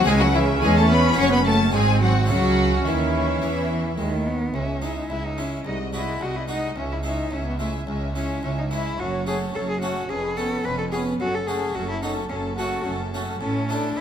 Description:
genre	classical, baroque-style concerto movement with solo episodes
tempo	108 BPM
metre	4/4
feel	straight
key	C# minor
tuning	A4 = 441 Hz
part	rich symphonic violin section	melody	0.0-14.0 s	E5 to C#6	-31 LUFS	left 4 dB	none
part	warm cello	melody	0.0-14.0 s	E3 to B4	-26 LUFS	left 2 dB	none
part	warm chamber violin section	second line	0.0-14.0 s	E4 to E5	-29 LUFS	left 2 dB	none
part	harpsichord	accompaniment	0.0-14.0 s	B#1 to F#4	-31 LUFS	equal	none
part	warm studio viola section	accompaniment	0.0-14.0 s	G#3 to C#4	-30 LUFS	equal	none
part	dark chamber cello section	bass	0.0-14.0 s	B#1 to E3	-29 LUFS	right 3 dB	none
part	rich chamber double bass section	bass	0.0-14.0 s	E#1 to E2	-28 LUFS	right 2 dB	none
room	moderate recital hall reverb, RT60 1.6 s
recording	none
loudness	-20 LUFS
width	side -8 dB against mid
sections	0.0-4.6 A section; 4.6-14.0 B section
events	none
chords	0.1 C#m; 1.2 F#m; 1.7 G#7; 2.3 C#m; 5.7 G#7/B#; 6.8 C#m; 9.0 F#m; 10.1 C#7/E#; 11.2 F#m; 13.4 A

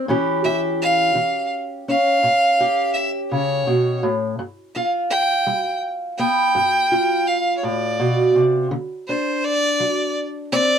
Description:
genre	acoustic country blues, solo or duo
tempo	56 BPM (dotted quarters)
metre	12/8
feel	straight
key	unclear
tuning	A4 = 441 Hz
part	fingerpicked steel-string acoustic guitar	accompaniment	0.0-10.8 s	G2 to G4	-20 LUFS	equal	none
part	clear fiddle	melody	0.4-10.8 s	C5 to G5	-19 LUFS	right 1 dB	slapback echo
room	moderate booth ambience, RT60 0.2 s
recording	none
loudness	-17 LUFS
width	side -8 dB against mid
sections	0.0-10.8 A section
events	none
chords	0.1 A7; 4.4 G7; 8.7 D7

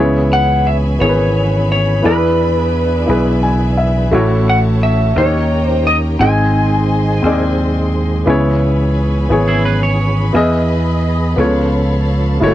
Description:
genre	slow gospel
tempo	58 BPM (dotted quarters)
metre	6/8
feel	straight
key	C# minor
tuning	A4 = 441 Hz
part	warm upright piano	accompaniment	0.0-12.5 s	G#2 to G#5	-16 LUFS	left 1 dB	none
part	tonewheel organ	sustained chords	0.0-12.5 s	D#3 to D#5	-22 LUFS	right 2 dB	slow rotary speaker, chorus vibrato
part	warm studio string section	sustained chords	0.0-12.5 s	B4 to C#6	-28 LUFS	equal	none
part	vintage slap bass	bass	0.0-12.5 s	F#1 to E2	-15 LUFS	equal	none
part	electric slide guitar	melody	0.3-7.5 s	B4 to G#5	-17 LUFS	left 1 dB	none
part	clean electric guitar	second line	9.5-10.3 s	E4 to C#5	-19 LUFS	right 5 dB	lush chorus
room	little or no reverb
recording	dry, close 1970s-style studio recording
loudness	-12 LUFS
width	side -13 dB against mid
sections	0.0-12.5 A section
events	upright piano fill 3.1-4.1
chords	0.0 C#m7; 2.0 E7; 4.1 A6; 5.2 D#7; 6.2 G#; 8.3 C#m7; 10.3 Emaj7; 11.4 C#7b13

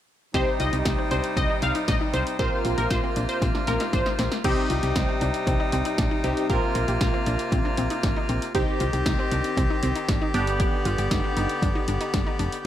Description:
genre	synth-pop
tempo	117 BPM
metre	4/4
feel	straight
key	C minor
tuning	A4 = 438 Hz
part	funky polysynth comp	second line	0.3-4.3 s	Bb4 to F5	-29 LUFS	left 1 dB	chorus, ping-pong delay
part	warm analog keys	accompaniment	0.3-12.4 s	B3 to Bb4	-31 LUFS	right 1 dB	chorus, phaser
part	accordion	sustained chords	0.3-12.7 s	C3 to G4	-28 LUFS	left 1 dB	none
part	analog pluck	arpeggios	0.3-12.5 s	C4 to G4	-32 LUFS	left 2 dB	chorus, ping-pong delay
part	solid FM bass	bass	0.3-12.5 s	F1 to C2	-27 LUFS	equal	none
part	punchy analog drum machine	drums	0.3-12.6 s	crash cymbal, hi-hat, kick drum, snare drum	-27 LUFS	equal	none
room	light reverb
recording	none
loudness	-22 LUFS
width	side -11 dB against mid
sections	0.3-4.4 A section; 4.4-12.7 B section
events	drum fill 3.4-4.4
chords	0.3 Cm; 2.4 Bbsus2; 4.4 Cm; 6.5 Bbsus2; 8.5 Cm; 10.3 G

